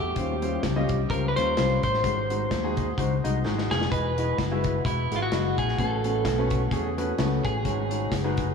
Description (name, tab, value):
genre	uptempo gospel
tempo	128 BPM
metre	4/4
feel	swing 56% on 8ths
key	unclear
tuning	A4 = 439 Hz
part	clean electric guitar	melody	0.0-8.5 s	E4 to B#4	-29 LUFS	equal	spring reverb, diffuse ambient delay
part	fingered electric bass	bass	0.0-8.5 s	E1 to E2	-28 LUFS	left 2 dB	none
part	warm grand piano	accompaniment	0.2-8.5 s	G#2 to E5	-29 LUFS	left 1 dB	none
part	modern studio drum kit	drums	0.2-8.5 s	hi-hat, kick drum, snare drum	-30 LUFS	left 1 dB	none
room	moderate cathedral reverb, RT60 4.8 s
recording	dreamy mix soaked in reverb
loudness	-23 LUFS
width	side -6 dB against mid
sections	0.0-8.5 A section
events	drum fill 3.4-3.9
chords	0.2 D#13; 2.0 G#7; 3.9 Emaj9; 5.8 A69; 7.7 G#7sus4